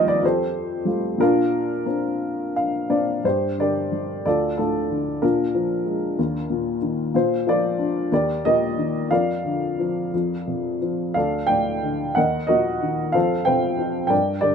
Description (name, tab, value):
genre	classical, lyrical solo piano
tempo	58-63 BPM (dotted quarters)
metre	6/8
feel	rubato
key	Bb major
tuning	A4 = 441 Hz
part	dark upright piano	solo	0.0-14.5 s	D2 to G5	-20 LUFS	left 1 dB	none
room	moderate small room reverb, RT60 0.5 s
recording	minimal, uncompressed stereo recording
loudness	-20 LUFS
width	side -6 dB against mid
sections	0.0-3.2 A section; 3.2-14.5 B section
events	upright piano fill 2.2-3.2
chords	0.2 Fadd9; 1.2 Bbadd9; 3.2 Gm; 4.3 Dm; 5.2 Bb7; 6.2 Eb5; 7.1 Bb; 8.1 Eb; 9.1 Bb/F; 10.1 F5; 11.2 D5; 12.2 Ebm; 13.2 Fadd9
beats	0.23 | 1.21 2.22 | 3.24 4.25 | 5.23 6.18 | 7.14 8.11 | 9.10 10.12 | 11.15 12.16 | 13.15 14.11